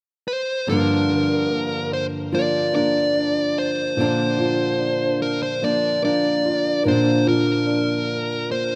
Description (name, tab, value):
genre	pop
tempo	73 BPM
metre	4/4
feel	straight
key	unclear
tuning	A4 = 440 Hz
part	dark smooth lead guitar	melody	0.3-8.8 s	Bb4 to D5	-25 LUFS	equal	overdrive
part	dark concert grand piano	accompaniment	0.7-8.8 s	G2 to F4	-28 LUFS	equal	none
part	fingerpicked steel-string acoustic guitar	arpeggios	0.7-8.8 s	G2 to Bb4	-25 LUFS	equal	none
room	light reverb, small room ambience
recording	rough home demo mix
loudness	-21 LUFS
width	mono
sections	0.7-8.8 A section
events	none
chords	0.0 N.C.; 0.7 Gm7; 4.0 Bb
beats	| 0.69 1.51 2.33 3.15 | 3.97 4.79 5.62 6.44 | 7.26 8.08